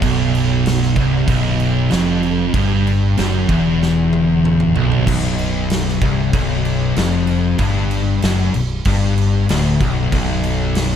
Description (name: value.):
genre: stoner and doom metal.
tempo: 95 BPM.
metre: 4/4.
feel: straight.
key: B phrygian.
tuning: A4 = 440 Hz.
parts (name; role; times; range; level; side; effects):
distorted electric guitar; riff; 0.0-11.0 s; B1 to G2; -22 LUFS; right 1 dB; distortion.
thick fuzz guitar; riff; 0.0-11.0 s; B1 to G2; -19 LUFS; left 6 dB; distortion.
thick fuzz guitar; riff; 0.0-5.1 s; B1 to G2; -19 LUFS; right 9 dB; distortion.
growling fingered electric bass; bass; 0.0-11.0 s; B0 to G1; -22 LUFS; right 1 dB; overdrive.
big rock drum kit; drums; 0.0-11.0 s; crash cymbal, kick drum, snare drum, toms; -22 LUFS; right 1 dB; none.
room: moderate small room reverb, RT60 0.5 s.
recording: dark, warm production.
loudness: -14 LUFS.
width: side -8 dB against mid.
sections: 0.0-5.1 A section; 5.1-11.0 B section.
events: drum fill 3.8-5.1.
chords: 0.0 B5; 5.1 Bm.